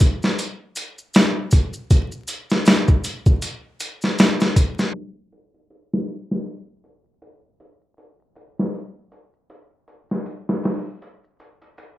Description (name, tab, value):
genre	trip hop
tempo	79 BPM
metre	4/4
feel	swing 57% on 16ths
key	none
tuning	none
part	boom bap sampler-style drum kit	drums	0.0-12.0 s	hi-hat, kick drum, snare drum	-17 LUFS	equal	none
part	maracas	percussion	0.2-12.0 s	none	-36 LUFS	left 1 dB	none
room	light reverb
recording	rough home demo mix, vinyl crackle, low-pass filter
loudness	-18 LUFS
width	side -15 dB against mid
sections	0.0-4.9 A section; 4.9-12.0 B section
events	filter sweep 4.9-12.0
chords	none